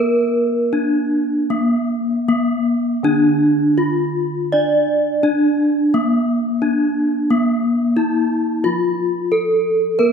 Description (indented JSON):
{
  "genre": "gamelan",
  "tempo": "76-90 BPM",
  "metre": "4/4",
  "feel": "straight",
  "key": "unclear",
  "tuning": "A4 = 444 Hz",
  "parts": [
    { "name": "gamelan-type bronze metallophone", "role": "melody", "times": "0.0-10.1 s", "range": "Bb3 to D5", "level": "-16 LUFS", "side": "left 1 dB", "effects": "none" },
    { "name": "gamelan-type bronze metallophone", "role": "accompaniment", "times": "0.0-10.1 s", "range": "D3 to D4", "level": "-23 LUFS", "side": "right 3 dB", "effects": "none" }
  ],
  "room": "wet scoring stage reverb, RT60 1.7 s",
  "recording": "minimal, uncompressed stereo recording",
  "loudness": "-15 LUFS",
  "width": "side -6 dB against mid",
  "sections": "0.0-7.3 A section; 7.3-10.1 B section",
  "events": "none",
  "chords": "none",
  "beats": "0.71 | 1.50 2.28 3.04 3.79 | 4.52 5.24 5.94 6.63 | 7.30 7.97 8.64 9.31 | 9.98"
}